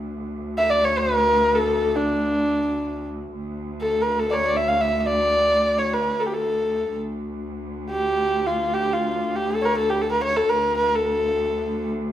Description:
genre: Persian modal ensemble.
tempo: free time.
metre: none.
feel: none.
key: D avaz esfahan.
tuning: A4 = 440 Hz.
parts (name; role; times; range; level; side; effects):
clear studio cello section; drone; 0.0-12.1 s; D2; -28 LUFS; equal; none.
warm kamancheh; melody; 0.6-11.9 s; D4 to F5; -20 LUFS; equal; none.
room: moderate recital hall reverb, RT60 1.4 s.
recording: minimal, uncompressed stereo recording.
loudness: -20 LUFS.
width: side -11 dB against mid.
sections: 0.0-3.4 A section; 3.4-12.1 A section.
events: none.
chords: none.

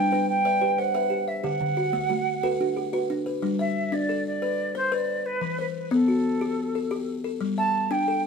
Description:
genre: southern african traditional.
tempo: 120 BPM (dotted quarters).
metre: 12/8.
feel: straight.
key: G major.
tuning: A4 = 442 Hz.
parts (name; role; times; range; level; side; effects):
mellow hollow silver concert flute; melody; 0.0-8.2 s; A4 to A5; -26 LUFS; right 2 dB; plate reverb.
buzzing kalimba; arpeggios; 0.0-8.3 s; D3 to E5; -26 LUFS; left 3 dB; none.
kalimba; arpeggios; 0.1-3.8 s; D3 to E5; -30 LUFS; right 6 dB; none.
room: wet studio reverb, RT60 0.5 s.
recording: none.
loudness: -23 LUFS.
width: side -5 dB against mid.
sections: 0.0-3.4 A section; 3.4-8.3 A section.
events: none.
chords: 0.0 G; 1.4 D; 3.4 G; 5.4 Em; 7.4 G5.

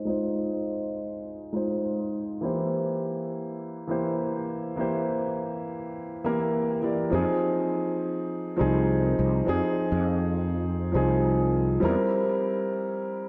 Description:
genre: sunset chillout.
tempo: 102 BPM.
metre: 4/4.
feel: straight.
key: unclear.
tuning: A4 = 443 Hz.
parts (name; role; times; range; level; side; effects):
dark concert grand piano; accompaniment; 0.0-13.3 s; E3 to D5; -28 LUFS; equal; low-pass filter, tape echo.
fretless electric bass; bass; 7.1-11.9 s; C2 to F2; -28 LUFS; equal; ensemble chorus.
room: wet lush hall reverb, RT60 2.5 s.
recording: dreamy mix soaked in reverb, low-pass filter.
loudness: -27 LUFS.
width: mono.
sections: 0.0-7.1 A section; 7.1-13.3 B section.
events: filter sweep on grand piano 0.0-7.1; filter sweep 0.0-7.1.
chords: 0.0 Fm7; 2.4 C7/E; 7.1 Fm7; 11.8 C7.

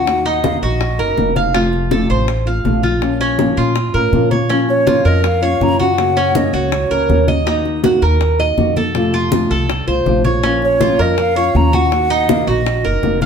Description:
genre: latin, Cuban son and guajira.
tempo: 162 BPM.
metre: 4/4.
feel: straight.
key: Bb harmonic minor.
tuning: A4 = 440 Hz.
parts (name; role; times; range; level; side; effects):
breathy mellow silver concert flute; melody; 0.0-1.3, 4.7-7.3, 10.6-13.2 s; Db5 to Bb5; -18 LUFS; equal; none.
nylon-string guitar; accompaniment; 0.0-13.3 s; C3 to Gb4; -19 LUFS; left 3 dB; none.
Cuban tres; arpeggios; 0.0-13.3 s; Db4 to F5; -18 LUFS; right 3 dB; none.
upright bass; bass; 0.0-13.3 s; F1 to Bb2; -19 LUFS; equal; none.
bongos; percussion; 0.1-13.2 s; none; -24 LUFS; left 5 dB; none.
congas; percussion; 0.1-13.3 s; none; -22 LUFS; left 2 dB; none.
room: wet studio reverb, RT60 0.9 s.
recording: heard from further back in the room.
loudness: -13 LUFS.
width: side -7 dB against mid.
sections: 0.0-4.5 A section; 4.5-13.3 A section.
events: none.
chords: 0.1 Ebm; 1.5 F; 3.0 Bbm; 6.0 Gb; 7.5 Ebm; 8.9 F; 10.4 Bbm; 11.9 Ebm.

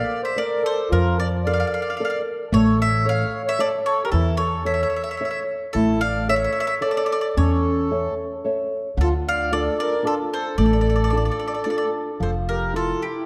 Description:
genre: italian folk, Italian serenade.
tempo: 112 BPM.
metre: 3/4.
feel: straight.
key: D minor.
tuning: A4 = 441 Hz.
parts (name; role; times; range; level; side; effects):
mandolin; melody; 0.0-13.3 s; G4 to F5; -28 LUFS; equal; none.
accordion; second line; 0.0-13.3 s; E4 to D5; -29 LUFS; equal; none.
nylon-string guitar; accompaniment; 0.0-13.2 s; D3 to E5; -27 LUFS; equal; none.
upright bass; bass; 0.9-12.9 s; F1 to F2; -25 LUFS; equal; none.
room: wet concert hall reverb, RT60 1.9 s.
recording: dark, warm production.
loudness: -22 LUFS.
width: mono.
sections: 0.0-12.2 A section; 12.2-13.3 B section.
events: none.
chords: 0.0 Bbmaj7; 2.5 A; 9.0 Dm; 12.2 Fmaj7.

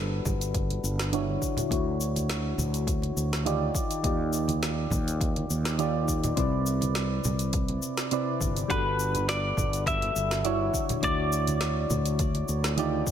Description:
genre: sunset chillout.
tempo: 103 BPM.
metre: 4/4.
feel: swing 53% on 16ths.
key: unclear.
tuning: A4 = 441 Hz.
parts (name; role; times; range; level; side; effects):
soft electric-piano-like synth keys; accompaniment; 0.0-13.1 s; C3 to D5; -30 LUFS; moving between left 5 dB and right 5 dB; chorus, auto-pan, low-pass filter, digital delay.
Celtic harp; arpeggios; 0.0-1.4 s; none; barely audible; none; none.
fretless electric bass; bass; 0.0-13.0 s; G1 to Eb2; -29 LUFS; equal; none.
deep house drum kit; drums; 0.3-13.1 s; hi-hat, shaker, snare drum; -34 LUFS; left 1 dB; none.
electronic kick drum; drums; 0.3-13.1 s; none; -31 LUFS; equal; none.
congas; percussion; 0.3-12.5 s; none; -37 LUFS; right 2 dB; none.
semi-hollow electric guitar; melody; 8.7-12.7 s; B4 to E5; -30 LUFS; left 1 dB; tape echo.
room: moderate concert hall reverb, RT60 2.0 s, digital ambience.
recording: none.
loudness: -25 LUFS.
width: side -9 dB against mid.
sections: 0.0-13.1 A section.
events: filter sweep on synth keys 0.0-13.1.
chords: 0.0 Gmaj9; 1.4 Dmaj9; 3.8 Ebmaj9; 6.4 Cmaj9; 8.7 Gmaj9; 10.7 Dmaj9.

